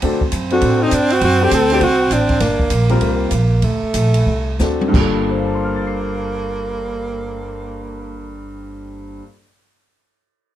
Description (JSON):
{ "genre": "jazz, small-group swing and bop", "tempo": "172-202 BPM", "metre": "4/4", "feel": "swing 63% on 8ths", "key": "G minor", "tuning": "A4 = 440 Hz", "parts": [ { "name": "clear tenor saxophone", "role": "second line", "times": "0.0-8.5 s", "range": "A3 to C4", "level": "-21 LUFS", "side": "right 4 dB", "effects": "none" }, { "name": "warm upright piano", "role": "accompaniment", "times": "0.0-9.5 s", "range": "G2 to C7", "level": "-21 LUFS", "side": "left 3 dB", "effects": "none" }, { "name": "upright bass", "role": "bass", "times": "0.0-9.2 s", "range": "G1 to A2", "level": "-20 LUFS", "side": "right 1 dB", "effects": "none" }, { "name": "open jazz drum kit", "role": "drums", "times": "0.0-5.0 s", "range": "china cymbal, hi-hat, kick drum, ride cymbal, snare drum, toms", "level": "-23 LUFS", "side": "right 1 dB", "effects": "none" }, { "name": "clear alto saxophone", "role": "melody", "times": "0.5-2.7 s", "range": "D4 to A4", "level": "-17 LUFS", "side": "left 1 dB", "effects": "none" } ], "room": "light reverb", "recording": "dark, warm production", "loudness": "-14 LUFS", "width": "side -12 dB against mid", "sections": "0.0-4.9 A section; 4.9-7.7 B section", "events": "slowing down 2.4-4.9; drum fill 4.6-4.9", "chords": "0.0 D7; 2.4 Gm7; 3.0 C5; 3.6 D7; 4.9 Gm7", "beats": "| 0.03 0.33 0.62 0.92 | 1.22 1.51 1.81 2.11 | 2.41 2.71 3.01 3.31 | 3.62 3.94 4.26 4.59 | 4.94 5.29 5.64 5.99 | 6.34 6.69 7.04 7.38" }